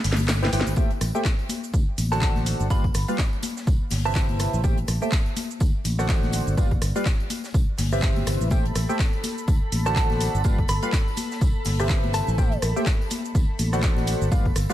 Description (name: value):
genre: piano house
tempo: 124 BPM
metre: 4/4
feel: swing 57% on 16ths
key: unclear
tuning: A4 = 443 Hz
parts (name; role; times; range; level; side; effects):
- analog string pad; sustained chords; 0.0-0.8, 8.5-14.7 s; A4 to B5; -35 LUFS; left 1 dB; ensemble chorus, sidechain pumping
- fingered electric bass; bass; 0.0-14.7 s; G1 to D2; -25 LUFS; equal; sidechain pumping
- deep reggae drum kit; drums; 0.0-14.7 s; hi-hat, snare drum, tambourine; -41 LUFS; left 2 dB; none
- garage drum kit; drums; 0.0-14.7 s; handclaps, hi-hat, rim click, shaker, snare drum; -30 LUFS; equal; none
- tambourine and congas; percussion; 0.2-14.7 s; none; -34 LUFS; left 5 dB; none
- percussive organ stab; riff; 0.4-14.7 s; C3 to G5; -29 LUFS; right 1 dB; analog chorus, sidechain pumping
- electronic kick drum; drums; 0.8-14.5 s; none; -22 LUFS; equal; none
- soft synth bell; melody; 2.1-4.5, 9.9-12.4 s; A5 to B5; -31 LUFS; right 2 dB; chorus, phaser, dub echo
room: small room ambience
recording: none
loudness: -21 LUFS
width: side -13 dB against mid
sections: 0.8-14.7 A section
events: break 0.0-0.8; drum fill 0.0-0.8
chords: 0.0 Cmaj7; 0.8 Am7; 1.5 D7; 2.7 G7; 3.7 Cmaj7; 4.6 Am7; 5.4 D7; 6.6 G7; 7.5 Cmaj7; 8.5 Am7; 9.2 D7; 10.4 G7; 11.4 Cmaj7; 12.4 Am7; 13.1 D7